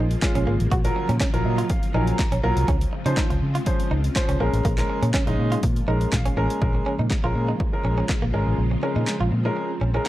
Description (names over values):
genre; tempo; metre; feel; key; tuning
dance-pop; 122 BPM; 4/4; straight; Bb minor; A4 = 440 Hz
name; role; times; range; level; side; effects
string machine, violas; sustained chords; 0.0-10.1 s; Db3 to F4; -31 LUFS; equal; phaser, ensemble chorus, sidechain pumping
direct-recorded clean electric guitar; riff; 0.0-10.1 s; Ab3 to Gb4; -30 LUFS; right 4 dB; lush chorus
vintage muted fingered electric bass; bass; 0.0-10.0 s; Ab1 to Db3; -23 LUFS; equal; sidechain pumping
house drum kit; drums; 0.1-10.1 s; handclaps, hi-hat, kick drum, snare drum; -24 LUFS; equal; none
warm baby grand piano; accompaniment; 0.2-10.1 s; F3 to Bb5; -27 LUFS; equal; sidechain pumping
room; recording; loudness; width
digital ambience; dry, gritty hardware recording; -20 LUFS; side -15 dB against mid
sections
0.0-6.6 A section; 6.6-10.1 B section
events
grand piano fill 1.2-2.7, 5.9-6.6, 9.8; kick muted 8.6-10.1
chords
0.0 Bbm7; 0.7 Gbmaj7/Bb; 2.7 Dbmaj7; 4.4 Bbm7